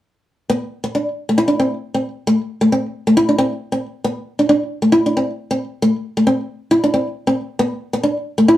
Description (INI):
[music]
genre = highlife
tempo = 136 BPM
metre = 4/4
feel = swing 53% on 16ths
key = unclear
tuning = A4 = 440 Hz
[part]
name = nylon-string guitar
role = solo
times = 0.5-8.6 s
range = A3 to E4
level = -15 LUFS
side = equal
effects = none
[sound]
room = moderate studio reverb, RT60 0.5 s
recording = band playing live in one room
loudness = -16 LUFS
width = side -14 dB against mid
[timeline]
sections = 0.5-7.6 A section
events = none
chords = none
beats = | 0.51 0.95 1.39 1.84 | 2.28 2.73 3.17 3.61 | 4.05 4.50 4.94 5.38 | 5.83 6.27 6.71 7.15 | 7.59 8.03 8.47